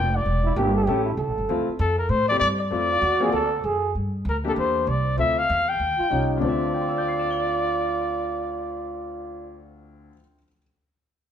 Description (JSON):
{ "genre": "jazz, small-group swing and bop", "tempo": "195 BPM", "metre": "4/4", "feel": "swing 63% on 8ths", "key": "D minor", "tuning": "A4 = 438 Hz", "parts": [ { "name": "mellow trumpet", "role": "melody", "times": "0.0-9.6 s", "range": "A4 to G5", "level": "-24 LUFS", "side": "left 2 dB", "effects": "none" }, { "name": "upright bass", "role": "bass", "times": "0.0-10.1 s", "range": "E1 to A2", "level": "-27 LUFS", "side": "right 1 dB", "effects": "none" }, { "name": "growling trombone", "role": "second line", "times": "0.4-4.0, 6.0-9.6 s", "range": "Eb4 to A4", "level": "-26 LUFS", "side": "right 4 dB", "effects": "none" }, { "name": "warm grand piano", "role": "accompaniment", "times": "0.6-10.6 s", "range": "D2 to G7", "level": "-29 LUFS", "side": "left 3 dB", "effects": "none" } ], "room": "wet stone room reverb, RT60 1.2 s", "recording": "band playing live in one room", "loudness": "-21 LUFS", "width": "side -9 dB against mid", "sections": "0.0-3.9 A section; 3.9-6.4 B section; 6.4-8.9 C section", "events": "none", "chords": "0.3 Em7b5; 0.9 A7; 1.5 Dm7; 3.3 D; 3.9 Gm; 4.6 Em7b5; 5.2 Dm9; 5.8 Eb7; 6.4 Dm9", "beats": "| 0.26 0.56 0.87 1.18 | 1.49 1.79 2.10 2.41 | 2.72 3.02 3.33 3.64 | 3.95 4.25 4.56 4.87 | 5.18 5.49 5.79 6.10 | 6.41 6.72 7.03 7.33 | 7.64 7.95 8.26 8.57" }